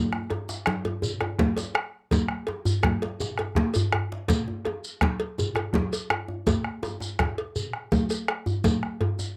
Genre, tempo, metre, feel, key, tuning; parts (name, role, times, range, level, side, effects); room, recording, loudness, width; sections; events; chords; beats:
west african traditional, West African drum ensemble; 110 BPM (dotted quarters); 12/8; straight
bombo; percussion; 0.1-9.1 s; -30 LUFS; equal
djembe; percussion; 0.1-9.4 s; -33 LUFS; equal
congas; percussion; 0.3-9.2 s; -30 LUFS; equal
cowbell; percussion; 0.3-9.2 s; -35 LUFS; equal
djembe; percussion; 0.3-9.2 s; -36 LUFS; equal
shekere; percussion; 0.5-9.4 s; -38 LUFS; equal
light reverb; home recording on cassette; -27 LUFS; mono
0.0-9.4 A section
0.48 1.03 1.57 | 2.12 2.66 3.21 3.75 | 4.29 4.84 5.38 5.92 | 6.47 7.01 7.55 8.10 | 8.64 9.19